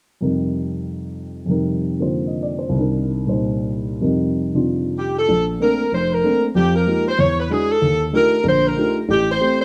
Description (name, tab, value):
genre	jazz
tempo	189 BPM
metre	4/4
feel	swing 62% on 8ths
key	unclear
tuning	A4 = 440 Hz
part	dark baby grand piano	accompaniment	0.2-9.6 s	F1 to Eb5	-22 LUFS	equal	none
part	warm saxophone section	melody	5.0-9.6 s	G4 to Db5	-20 LUFS	equal	none
room	moderate large studio reverb, RT60 1.0 s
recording	dark, warm production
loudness	-19 LUFS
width	mono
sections	0.2-5.3 A section; 5.3-9.6 B section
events	none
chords	0.2 F7sus4; 2.7 Cm7; 4.0 F7sus4; 5.3 Bbmaj9; 6.5 Fm11; 7.2 E9; 7.8 Ebmaj9#11; 9.1 Am7